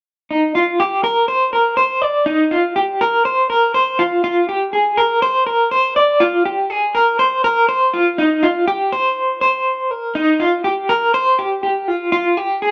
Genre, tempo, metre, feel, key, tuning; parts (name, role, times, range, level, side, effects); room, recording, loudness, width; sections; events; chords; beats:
indie pop; 122 BPM; 4/4; straight; C minor; A4 = 439 Hz
electric guitar through a small old amp; solo; 0.3-12.7 s; Eb4 to D5; -16 LUFS; equal; tremolo
wet studio reverb, RT60 0.5 s; rough home demo mix; -16 LUFS; mono
0.3-8.2 A section; 8.2-12.7 B section
| 0.30 0.80 1.29 1.78 | 2.27 2.77 3.26 3.75 | 4.24 4.74 5.23 5.72 | 6.21 6.71 7.20 7.69 | 8.18 8.68 9.17 9.66 | 10.15 10.64 11.14 11.63 | 12.12 12.61